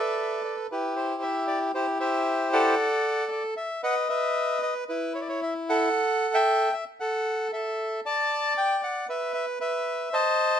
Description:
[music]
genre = tango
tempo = 115 BPM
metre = 4/4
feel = rubato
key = unclear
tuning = A4 = 440 Hz
[part]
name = bandoneon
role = solo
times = 0.0-10.6 s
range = E4 to A5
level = -24 LUFS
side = equal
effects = none
[sound]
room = moderate stone room reverb, RT60 0.9 s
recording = band playing live in one room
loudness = -24 LUFS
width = side -8 dB against mid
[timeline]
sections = 0.0-10.6 A section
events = none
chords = 0.0 Asus4; 0.7 Em; 1.7 C/E; 2.8 D; 3.8 B; 4.9 A5; 5.9 F#m7/A; 8.0 N.C.

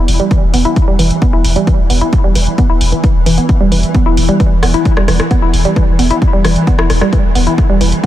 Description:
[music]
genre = driving peak-time techno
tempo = 132 BPM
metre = 4/4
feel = straight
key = E minor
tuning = A4 = 440 Hz
[part]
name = woody wave-folded pluck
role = riff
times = 0.0-8.1 s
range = E3 to E4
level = -15 LUFS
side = right 1 dB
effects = chorus, sidechain pumping, tape echo
[part]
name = saturated sub bass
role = bass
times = 0.0-7.9 s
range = E1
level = -15 LUFS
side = equal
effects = overdrive, sidechain pumping, low-pass filter
[part]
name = swarming drone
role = drone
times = 0.0-8.1 s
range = E3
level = -20 LUFS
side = equal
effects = built-in reverb, analog chorus, sidechain pumping
[part]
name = punchy analog drum machine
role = drums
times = 0.1-8.1 s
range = hi-hat, rim click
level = -20 LUFS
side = left 1 dB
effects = sidechain pumping on hats, sidechain pumping on cymbals
[part]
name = electronic kick drum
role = drums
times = 0.3-8.1 s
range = none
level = -12 LUFS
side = equal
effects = overdrive
[sound]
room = light reverb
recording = none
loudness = -9 LUFS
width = side -13 dB against mid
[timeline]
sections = 0.0-8.1 A section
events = none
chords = none

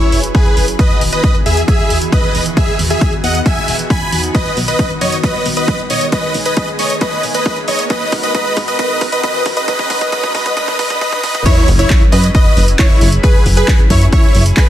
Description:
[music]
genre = uplifting trance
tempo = 135 BPM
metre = 4/4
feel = straight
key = unclear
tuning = A4 = 440 Hz
[part]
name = big supersaw lead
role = melody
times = 0.0-14.7 s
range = E4 to B5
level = -16 LUFS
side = equal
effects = sidechain pumping, dub echo
[part]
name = analog string pad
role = sustained chords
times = 0.0-14.7 s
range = D#3 to B4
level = -23 LUFS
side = equal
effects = ensemble chorus, sidechain pumping
[part]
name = punchy analog drum machine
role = drums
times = 0.0-14.7 s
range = crash cymbal, handclaps, hi-hat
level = -22 LUFS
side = right 1 dB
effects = overdrive, sidechain pumping on hats, sidechain pumping on cymbals
[part]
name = riser and sub drop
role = sound effects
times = 1.9-13.2 s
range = none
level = -27 LUFS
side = equal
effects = none
[part]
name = plucky analog bass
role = bass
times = 0.1-14.5 s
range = E1 to G#2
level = -15 LUFS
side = equal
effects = sidechain pumping
[part]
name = electronic kick drum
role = drums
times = 0.3-14.7 s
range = none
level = -13 LUFS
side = equal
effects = overdrive
[part]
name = analog pluck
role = second line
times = 11.5-14.7 s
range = B4 to D#5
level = -23 LUFS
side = equal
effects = chorus, sidechain pumping, dub echo
[sound]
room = light reverb, digital ambience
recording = dense, heavily limited modern master, high-pass filter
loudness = -11 LUFS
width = side -12 dB against mid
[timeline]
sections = 0.0-11.5 A section; 11.5-14.7 B section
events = build-up 0.0-11.5; filter sweep 0.0-11.5; drum fill 4.3-11.5; drop 11.5-14.7; impact 11.5-13.2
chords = 0.0 F#7sus4; 0.8 Emaj7; 4.3 B; 7.9 G#m7; 11.5 F#7sus4

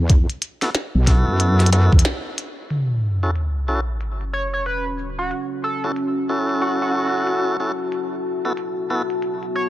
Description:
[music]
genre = glitch hop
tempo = 92 BPM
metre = 4/4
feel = swing 62% on 16ths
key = F# minor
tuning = A4 = 439 Hz
[part]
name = wobble bass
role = bass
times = 0.0-2.0 s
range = B1 to F#2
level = -16 LUFS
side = equal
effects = chorus
[part]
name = electronic kick drum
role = drums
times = 0.1-2.0 s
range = none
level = -15 LUFS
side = equal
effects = overdrive
[part]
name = glitchy drum kit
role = drums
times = 0.1-9.5 s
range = hi-hat, shaker, snare drum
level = -25 LUFS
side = equal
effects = low-pass filter on hats, low-pass filter on snare, low-pass filter on perc
[part]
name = tonewheel organ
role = stabs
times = 0.6-9.0 s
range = B3 to A4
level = -24 LUFS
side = equal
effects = overdrive, sidechain pumping, low-pass filter, tape echo
[part]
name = sub drop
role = sound effects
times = 2.7-5.3 s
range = none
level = -23 LUFS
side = equal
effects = none
[part]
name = deep dark ambient pad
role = texture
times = 4.3-9.7 s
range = B3 to A5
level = -25 LUFS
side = left 1 dB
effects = chorus, built-in reverb, sidechain pumping
[part]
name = sync lead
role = melody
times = 4.3-9.7 s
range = F#4 to C#5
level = -26 LUFS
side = right 1 dB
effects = chorus, tape echo
[sound]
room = light reverb, digital ambience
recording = none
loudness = -18 LUFS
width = side -14 dB against mid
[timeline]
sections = 0.0-2.7 A section; 2.7-9.7 B section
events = break 2.1-2.7; band accent 2.1-2.4; impact 2.7-5.3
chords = 0.0 B7sus4; 2.7 F#m7; 7.9 B7sus4

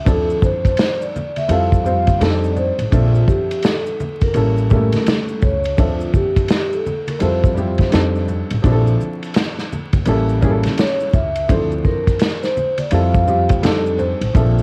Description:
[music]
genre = hip hop, jazz-hop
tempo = 84 BPM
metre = 4/4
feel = swing 63% on 16ths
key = D minor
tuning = A4 = 440 Hz
[part]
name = vibraphone with soft mallets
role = melody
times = 0.0-14.6 s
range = F4 to F5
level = -24 LUFS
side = equal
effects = cassette tape
[part]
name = warm grand piano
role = accompaniment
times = 0.0-14.6 s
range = F3 to E5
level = -24 LUFS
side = equal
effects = cassette tape
[part]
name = upright bass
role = bass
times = 0.1-14.6 s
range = A1 to F2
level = -21 LUFS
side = equal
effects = none
[part]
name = vintage drum kit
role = drums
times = 0.1-14.6 s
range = hi-hat, kick drum, ride cymbal, snare drum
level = -21 LUFS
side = equal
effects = cassette tape
[part]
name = maracas and congas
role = percussion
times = 0.1-14.6 s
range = none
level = -32 LUFS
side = equal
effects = none
[sound]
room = moderate studio reverb, RT60 0.5 s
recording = home recording on cassette, vinyl crackle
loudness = -17 LUFS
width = mono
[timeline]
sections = 0.0-14.6 A section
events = none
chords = 0.1 Dm7; 1.5 Fmaj7; 2.2 F13; 2.9 Bbmaj9#11; 4.4 A7b9; 5.8 Dm7; 7.2 Fmaj7; 7.9 F13; 8.6 Bbmaj9#11; 10.1 A7b9; 11.5 Dm7; 12.9 Fmaj7; 13.6 F13

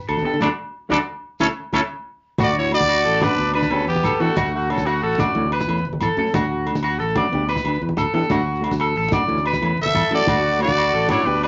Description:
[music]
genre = highlife guitar band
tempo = 122 BPM (dotted quarters)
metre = 12/8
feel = straight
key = D major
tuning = A4 = 443 Hz
[part]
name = shekere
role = percussion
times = 0.0-11.2 s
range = none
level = -35 LUFS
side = equal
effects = none
[part]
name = electric guitar at the edge of break-up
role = arpeggios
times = 0.1-11.5 s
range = E4 to D5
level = -26 LUFS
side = equal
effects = none
[part]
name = modern bright fingered electric bass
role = bass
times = 0.1-11.5 s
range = F#1 to E3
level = -27 LUFS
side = equal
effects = none
[part]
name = agogo bells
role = percussion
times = 0.1-11.5 s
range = none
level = -31 LUFS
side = equal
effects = none
[part]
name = mellow electric guitar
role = accompaniment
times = 0.2-11.4 s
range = E3 to G4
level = -29 LUFS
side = equal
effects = warbly pitch drift
[part]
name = congas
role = percussion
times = 0.2-11.2 s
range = none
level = -29 LUFS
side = equal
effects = none
[part]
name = growling trumpet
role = melody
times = 0.4-5.5, 9.8-11.5 s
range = F#4 to E5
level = -24 LUFS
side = equal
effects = none
[part]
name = bright alto saxophone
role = second line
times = 0.4-5.5, 9.8-11.5 s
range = A3 to A4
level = -29 LUFS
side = equal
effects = none
[part]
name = combo organ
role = sustained chords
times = 10.3-11.5 s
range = D4 to B4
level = -36 LUFS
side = equal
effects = none
[sound]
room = wet small room reverb, RT60 0.5 s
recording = nothing above 7.6 kHz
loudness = -20 LUFS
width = mono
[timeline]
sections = 0.0-2.4 A section; 2.4-11.5 B section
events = band accent 0.4-2.4; drum fill 1.6-2.4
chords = 0.4 D; 1.4 A/D; 2.4 D; 3.4 G/D; 4.4 D; 5.4 A/D; 6.3 D; 7.3 G/D; 8.3 D; 9.3 A/D; 10.3 D

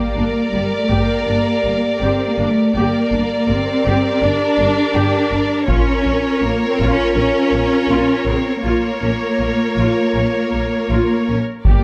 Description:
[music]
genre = cinematic, epic orchestral film score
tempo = 81 BPM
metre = 4/4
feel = straight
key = unclear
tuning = A4 = 440 Hz
[part]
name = rich symphonic violin section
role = melody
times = 0.0-11.8 s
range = Db5 to D5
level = -27 LUFS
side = equal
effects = none
[part]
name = warm symphonic violin section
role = second line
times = 0.0-11.8 s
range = Bb4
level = -27 LUFS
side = equal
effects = none
[part]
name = dark symphonic viola section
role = accompaniment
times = 0.0-11.8 s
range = Db3 to G4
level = -27 LUFS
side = equal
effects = none
[part]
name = mellow French horn section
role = sustained chords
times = 0.0-11.8 s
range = F4 to D5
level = -26 LUFS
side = equal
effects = none
[part]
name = warm symphonic cello section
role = bass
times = 0.0-11.8 s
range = G3 to D4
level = -21 LUFS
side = equal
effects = none
[part]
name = rich symphonic double bass section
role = bass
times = 0.2-11.7 s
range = G1 to Bb1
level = -24 LUFS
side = equal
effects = none
[part]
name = taiko ensemble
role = drums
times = 0.9-1.2, 5.7-7.1, 11.6-11.8 s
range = none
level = -22 LUFS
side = equal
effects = none
[sound]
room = light reverb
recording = close, detailed microphones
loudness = -17 LUFS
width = mono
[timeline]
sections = 0.0-11.8 A section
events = none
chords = 0.0 Gm; 5.7 Bbm

